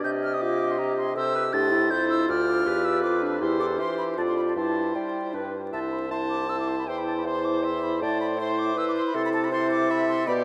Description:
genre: quick classical-period movement for wind quintet.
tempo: 159 BPM.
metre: 3/4.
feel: straight.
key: C major.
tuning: A4 = 440 Hz.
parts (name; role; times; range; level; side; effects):
concert flute; melody; 0.0-10.3 s; G5 to A6; -32 LUFS; equal; none.
warm oboe; second line; 0.0-10.4 s; G4 to Eb5; -35 LUFS; equal; none.
clear clarinet; accompaniment; 0.0-10.4 s; D4 to A5; -32 LUFS; equal; none.
warm French horn; accompaniment; 0.0-10.4 s; B3 to A4; -31 LUFS; equal; none.
warm bassoon; bass; 0.0-10.4 s; C2 to G3; -32 LUFS; equal; none.
room: wet cathedral reverb, RT60 6.0 s.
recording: in a vast, echoing space, vinyl crackle.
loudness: -25 LUFS.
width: mono.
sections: 0.0-5.7 A section; 5.7-10.4 B section.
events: none.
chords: 0.0 Cm; 1.2 C; 2.3 Bdim/D; 3.4 C/E; 4.2 Dm/F; 4.6 C/G; 5.3 G; 5.7 C; 6.9 C/E; 8.0 Am; 9.1 Am/C.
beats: | 0.04 0.42 0.79 | 1.16 1.53 1.91 | 2.29 2.66 3.03 | 3.41 3.79 4.17 | 4.56 4.95 5.34 | 5.73 6.11 6.50 | 6.88 7.26 7.64 | 8.02 8.40 8.77 | 9.15 9.52 9.90 | 10.27.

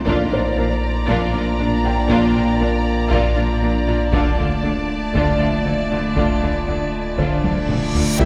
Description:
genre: cinematic, hybrid orchestral and electronic film score.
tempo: 118 BPM.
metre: 4/4.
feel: straight.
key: D minor.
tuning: A4 = 441 Hz.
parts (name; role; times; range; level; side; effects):
rich symphonic violin section; second line; 0.0-8.3 s; D5 to Bb5; -28 LUFS; equal; none.
metallic inharmonic drone; sustained chords; 0.0-8.3 s; G3 to D5; -25 LUFS; equal; chorus, built-in reverb.
pure sine sub bass; bass; 0.0-8.3 s; D1 to C2; -28 LUFS; equal; none.
felt-muted upright piano; texture; 0.0-8.2 s; C5 to G5; -33 LUFS; equal; none.
rich symphonic viola section; accompaniment; 0.1-8.3 s; D4 to F4; -29 LUFS; equal; none.
glassy wavetable pluck; arpeggios; 0.1-8.3 s; C3 to Bb4; -30 LUFS; equal; none.
bright symphonic cello section; bass; 0.1-8.3 s; Bb2 to D3; -28 LUFS; equal; none.
rich symphonic double bass section; bass; 0.1-8.3 s; Bb1 to D2; -29 LUFS; equal; none.
solo taiko drums; drums; 0.1-8.3 s; none; -28 LUFS; equal; none.
reverse cymbal and impact; sound effects; 7.6-8.3 s; none; -29 LUFS; equal; none.
rich symphonic violin section; melody; 8.2-8.3 s; G5; -33 LUFS; equal; none.
mellow French horn section; sustained chords; 8.2-8.3 s; none; barely audible; none; none.
dark tuba; bass; 8.2-8.3 s; C2; -22 LUFS; equal; none.
room: wet scoring stage reverb, RT60 1.5 s.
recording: heard from further back in the room.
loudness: -19 LUFS.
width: mono.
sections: 0.0-8.2 A section.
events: drum fill 7.4-8.2; reverse cymbal 7.6-8.2.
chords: 0.1 Bb; 4.1 Dm.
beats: | 0.06 0.57 1.08 1.59 | 2.10 2.60 3.11 3.62 | 4.13 4.64 5.15 5.65 | 6.16 6.67 7.18 7.69 | 8.20.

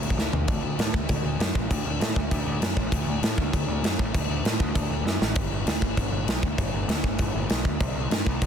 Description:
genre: punk rock.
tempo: 197 BPM.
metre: 4/4.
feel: straight.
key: D mixolydian.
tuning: A4 = 440 Hz.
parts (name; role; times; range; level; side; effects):
fuzz picked electric bass; bass; 0.0-8.5 s; G1 to A2; -28 LUFS; equal; overdrive.
big rock drum kit; drums; 0.0-8.5 s; crash cymbal, kick drum, snare drum, toms; -25 LUFS; equal; none.
room: little or no reverb.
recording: dense, heavily limited modern master.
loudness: -23 LUFS.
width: side -8 dB against mid.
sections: 0.5-8.5 A section.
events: drum fill 0.2-0.5, 5.1-5.4.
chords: none.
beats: 0.18 | 0.48 0.79 1.09 1.40 | 1.70 2.01 2.31 2.62 | 2.92 3.23 3.53 3.83 | 4.14 4.45 4.75 5.06 | 5.36 5.67 5.97 6.28 | 6.58 6.89 7.19 7.50 | 7.80 8.11 8.41.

